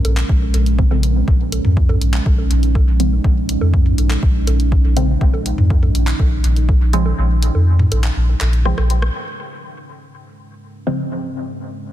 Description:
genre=dub techno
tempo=122 BPM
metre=4/4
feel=straight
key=Bb minor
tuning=A4 = 440 Hz
part: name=deep dark ambient pad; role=sustained chords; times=0.0-11.9 s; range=Ab3 to Bb4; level=-25 LUFS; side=right 3 dB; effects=chorus, built-in reverb, sidechain pumping
part: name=soft dub sub bass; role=bass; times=0.0-9.1 s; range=Bb1 to F2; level=-16 LUFS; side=equal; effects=tube saturation, sidechain pumping
part: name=deep house drum kit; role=drums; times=0.0-9.1 s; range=handclaps, hi-hat, rim click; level=-27 LUFS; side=equal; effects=dub echo
part: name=electronic bongos and toms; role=percussion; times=0.0-8.9 s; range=none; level=-26 LUFS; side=equal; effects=sidechain pumping on perc, sidechain pumping on toms, dub echo
part: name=electronic kick drum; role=drums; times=0.3-6.8 s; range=none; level=-16 LUFS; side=equal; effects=none
part: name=filtered dub chord stab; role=stabs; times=0.8-11.0 s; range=Db3 to C4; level=-24 LUFS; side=equal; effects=phaser, sidechain pumping, dub echo
room=little or no reverb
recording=dense, heavily limited modern master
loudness=-14 LUFS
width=side -12 dB against mid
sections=0.0-9.1 A section; 9.1-11.9 B section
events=filter sweep on synth stab 0.0-9.1; kick drops out 7.2-9.1; drum fill 8.7-9.1; band accent 9.0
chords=0.0 Bbm7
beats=0.29 0.79 | 1.28 1.77 2.26 2.75 | 3.25 3.74 4.23 4.72 | 5.21 5.70 6.20 6.69 | 7.18 7.67 8.16 8.65 | 9.15 9.64 10.13 10.62 | 11.11 11.61

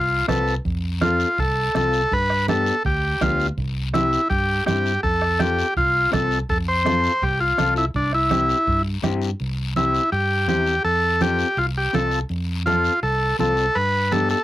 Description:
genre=latin, cumbia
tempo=165 BPM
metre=4/4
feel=straight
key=C major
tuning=A4 = 438 Hz
part: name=overdriven combo organ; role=melody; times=0.0-14.4 s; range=D4 to C5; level=-20 LUFS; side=equal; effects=none
part: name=fingered electric bass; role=bass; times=0.0-14.3 s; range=C2 to G2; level=-25 LUFS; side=equal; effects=none
part: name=mellow electric guitar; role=accompaniment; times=0.3-14.4 s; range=B3 to B4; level=-25 LUFS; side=left 6 dB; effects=cassette tape
part: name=bombo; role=percussion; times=0.3-9.2 s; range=none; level=-28 LUFS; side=right 2 dB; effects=none
part: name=congas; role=percussion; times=0.3-14.3 s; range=none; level=-28 LUFS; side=right 6 dB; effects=none
part: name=guiro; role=percussion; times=0.3-14.4 s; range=none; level=-36 LUFS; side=left 8 dB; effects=none
room=light reverb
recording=home recording on cassette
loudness=-18 LUFS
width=side -14 dB against mid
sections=0.0-9.4 A section; 9.4-14.4 A section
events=none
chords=0.0 F; 2.1 G; 3.6 C; 5.0 F; 7.9 C; 10.8 F; 13.8 G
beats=0.29 | 0.66 1.02 1.39 1.75 | 2.12 2.48 2.85 3.21 | 3.58 3.94 4.31 4.67 | 5.04 5.40 5.76 6.13 | 6.49 6.86 7.22 7.58 | 7.95 8.31 8.67 9.04 | 9.40 9.76 10.12 10.49 | 10.85 11.21 11.57 11.94 | 12.30 12.66 13.03 13.39 | 13.75 14.12

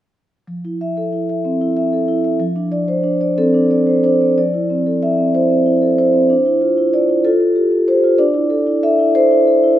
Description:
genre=classical, contemporary piece for solo vibraphone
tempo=62 BPM (dotted quarters)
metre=6/8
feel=rubato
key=F major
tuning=A4 = 440 Hz
part: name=vibraphone with soft mallets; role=solo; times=0.5-9.8 s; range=F3 to E5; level=-13 LUFS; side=equal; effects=none
room=moderate recital hall reverb, RT60 1.5 s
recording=none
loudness=-13 LUFS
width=side -12 dB against mid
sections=0.5-4.4 A section; 4.4-9.8 B section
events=none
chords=0.5 Fmaj7; 2.4 Dm7/F; 4.4 Fmaj7; 6.3 Dm9; 7.3 Fadd9; 8.2 Dsus2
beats=| 0.48 1.45 | 2.40 3.38 | 4.37 5.35 | 6.32 7.26 | 8.20 9.15

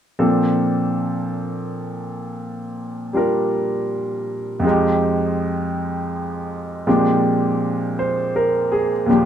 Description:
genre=jazz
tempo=54 BPM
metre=4/4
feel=swing 66% on 8ths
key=Bb major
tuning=A4 = 440 Hz
part: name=bright baby grand piano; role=accompaniment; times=0.2-9.3 s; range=Eb2 to C5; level=-18 LUFS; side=equal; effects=none
room=light reverb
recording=band playing live in one room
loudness=-18 LUFS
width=side -9 dB against mid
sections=0.2-9.3 A section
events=none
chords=0.2 Bbmaj9; 4.6 Fm7; 6.9 Bb13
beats=| 0.19 1.30 2.42 3.53 | 4.64 5.75 6.86 7.96 | 9.07

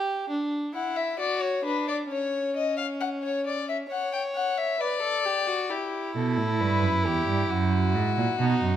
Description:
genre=classical, baroque-style fugue for string quartet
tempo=67 BPM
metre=3/4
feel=straight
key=unclear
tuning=A4 = 441 Hz
part: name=warm violin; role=second line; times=0.0-8.8 s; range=C#4 to C#5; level=-30 LUFS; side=right 1 dB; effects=none
part: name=rich violin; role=melody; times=0.7-8.8 s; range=F#4 to G5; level=-28 LUFS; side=left 5 dB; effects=none
part: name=warm cello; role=bass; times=6.2-8.8 s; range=E2 to B2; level=-24 LUFS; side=right 4 dB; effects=none
room=moderate recital hall reverb, RT60 1.5 s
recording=none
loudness=-24 LUFS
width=side -10 dB against mid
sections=0.0-8.8 A section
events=none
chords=0.3 Bm/D (rootless); 2.1 N.C.; 3.0 F#5/C#; 4.8 Bm; 5.7 Em; 7.5 F#7(no3)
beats=| 0.30 1.20 2.10 | 3.01 3.90 4.80 | 5.70 6.60 7.50 | 8.40

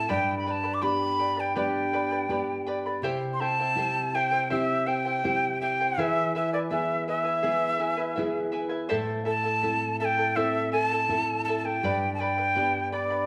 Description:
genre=andean folk, Andean ensemble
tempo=82 BPM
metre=4/4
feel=straight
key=A minor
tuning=A4 = 440 Hz
part: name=breathy bright quena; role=melody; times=0.0-13.3 s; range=D5 to D6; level=-29 LUFS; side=equal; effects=none
part: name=charango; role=accompaniment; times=0.0-13.3 s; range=E4 to B5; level=-34 LUFS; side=equal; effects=none
part: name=nylon-string guitar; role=accompaniment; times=0.0-13.3 s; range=G2 to A4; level=-34 LUFS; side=equal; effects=none
room=moderate recital hall reverb, RT60 1.5 s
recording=studio ambience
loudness=-27 LUFS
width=mono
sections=0.0-13.3 A section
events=none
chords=0.1 G; 3.0 C; 6.0 E; 8.9 Am; 11.8 G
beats=| 0.10 0.84 1.57 2.30 | 3.04 3.77 4.50 5.24 | 5.97 6.70 7.43 8.17 | 8.90 9.63 10.37 11.10 | 11.83 12.56

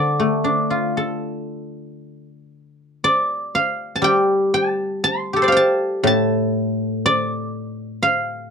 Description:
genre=chinese traditional, Chinese solo plucked strings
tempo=57-62 BPM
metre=4/4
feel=rubato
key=D yu mode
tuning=A4 = 440 Hz
part: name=guzheng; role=solo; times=0.0-8.5 s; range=A2 to C6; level=-18 LUFS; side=equal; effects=none
room=light reverb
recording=dry, close 1970s-style studio recording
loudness=-17 LUFS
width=side -6 dB against mid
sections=0.0-8.5 A section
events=none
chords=none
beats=0.97 | 2.01 3.03 4.04 5.04 | 6.05 7.05 8.02

